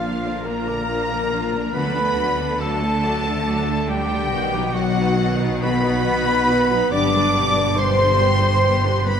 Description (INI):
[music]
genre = cinematic, emotional film score for orchestra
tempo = 47 BPM (dotted quarters)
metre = 6/8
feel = rubato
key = G major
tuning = A4 = 439 Hz
[part]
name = dark studio violin section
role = melody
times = 0.0-9.2 s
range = F5 to D6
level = -26 LUFS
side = left 3 dB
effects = none
[part]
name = mellow cor anglais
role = second line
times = 0.0-9.2 s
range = F4 to D5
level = -27 LUFS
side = right 3 dB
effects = none
[part]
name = silver concert flute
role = second line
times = 0.0-9.2 s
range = F5 to D6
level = -28 LUFS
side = left 1 dB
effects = none
[part]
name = warm clarinet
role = second line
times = 0.0-9.2 s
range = F4 to D5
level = -27 LUFS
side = equal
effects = none
[part]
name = warm studio violin section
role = second line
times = 0.0-9.2 s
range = A3 to B4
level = -32 LUFS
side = left 3 dB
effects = none
[part]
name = warm studio viola section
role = accompaniment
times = 0.0-9.2 s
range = D3 to D#4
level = -29 LUFS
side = right 2 dB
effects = none
[part]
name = dark French horn section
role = sustained chords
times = 0.0-9.2 s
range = F3 to C5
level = -25 LUFS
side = left 2 dB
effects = none
[part]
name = concert harp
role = arpeggios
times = 0.0-9.2 s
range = G2 to D#6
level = -29 LUFS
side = left 8 dB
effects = none
[part]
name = dark studio double bass section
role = bass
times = 0.0-9.2 s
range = G1 to D2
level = -27 LUFS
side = right 4 dB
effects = none
[part]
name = rich studio cello section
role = bass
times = 0.0-9.2 s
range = G2 to D3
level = -26 LUFS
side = right 2 dB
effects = none
[sound]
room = wet scoring stage reverb, RT60 1.7 s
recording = none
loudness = -17 LUFS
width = side -7 dB against mid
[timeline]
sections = 0.0-9.2 A section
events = none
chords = 0.0 Bb; 1.7 D; 4.3 B; 6.9 G